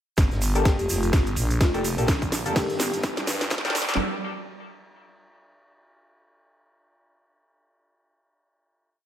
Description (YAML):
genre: bass house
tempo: 126 BPM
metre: 4/4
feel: swing 57% on 16ths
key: G minor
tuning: A4 = 440 Hz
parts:
  - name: growling FM bass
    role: bass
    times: 0.2-4.0 s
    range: F1 to G2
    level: -27 LUFS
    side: equal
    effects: overdrive, sidechain pumping
  - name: electronic kick drum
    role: drums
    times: 0.2-3.6 s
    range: none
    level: -23 LUFS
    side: equal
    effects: none
  - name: garage drum kit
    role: drums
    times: 0.2-4.0 s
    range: hi-hat, snare drum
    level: -29 LUFS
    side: equal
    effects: none
  - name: vintage drum kit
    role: drums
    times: 0.2-4.0 s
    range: hi-hat, ride cymbal, snare drum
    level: -38 LUFS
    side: equal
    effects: high-pass filter on cymbals, high-pass filter on hats, high-pass filter on snare, high-pass filter on room
  - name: tube shaker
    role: percussion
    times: 0.2-4.0 s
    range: none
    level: -35 LUFS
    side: right 4 dB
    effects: none
  - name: riser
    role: sound effects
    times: 1.8-4.0 s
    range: none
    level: -35 LUFS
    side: right 2 dB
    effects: none
  - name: band-passed chord stab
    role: stabs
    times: 0.6-4.0 s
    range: Bb3 to A4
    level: -30 LUFS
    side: left 2 dB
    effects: chorus, phaser, sidechain pumping, digital delay
  - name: vibraphone with soft mallets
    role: melody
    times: 0.7-3.0 s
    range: F4 to G4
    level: -31 LUFS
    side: left 1 dB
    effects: digital delay
room: light reverb, small room ambience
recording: high-pass filter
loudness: -21 LUFS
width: side -11 dB against mid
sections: 0.2-4.0 build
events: build-up 0.2-4.0; drum fill 0.2-4.0; filter sweep on synth stab 0.2-4.0; filter sweep 0.2-4.0; riser 1.8-4.0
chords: 0.2 Gmadd9